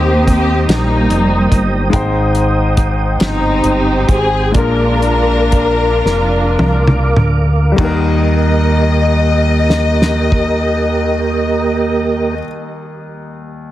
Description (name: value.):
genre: slow gospel.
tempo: 32-48 BPM (dotted quarters).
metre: 6/8.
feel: straight.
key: Eb major.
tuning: A4 = 439 Hz.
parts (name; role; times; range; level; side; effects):
dark studio string section; melody; 0.0-12.4 s; G3 to Eb5; -16 LUFS; left 1 dB; none.
clear concert grand piano; accompaniment; 0.0-13.7 s; Eb2 to G5; -20 LUFS; left 3 dB; none.
mellow tonewheel organ; sustained chords; 0.0-12.3 s; Bb3 to Eb6; -20 LUFS; right 4 dB; fast rotary speaker, chorus vibrato.
fingered electric bass; bass; 0.0-12.4 s; F1 to Eb2; -16 LUFS; equal; none.
warm soul drum kit; drums; 0.3-10.6 s; crash cymbal, hi-hat, kick drum, snare drum, toms; -16 LUFS; equal; none.
room: small room ambience.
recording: heavily compressed radio sound, multiband compression.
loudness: -11 LUFS.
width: side -14 dB against mid.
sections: 0.0-7.8 A section; 7.8-11.6 B section.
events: slowing down 1.9-7.8; drum fill 6.0-7.8.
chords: 0.0 Cm7/Eb; 1.9 Abmaj7; 4.5 Bb7; 7.8 Eb.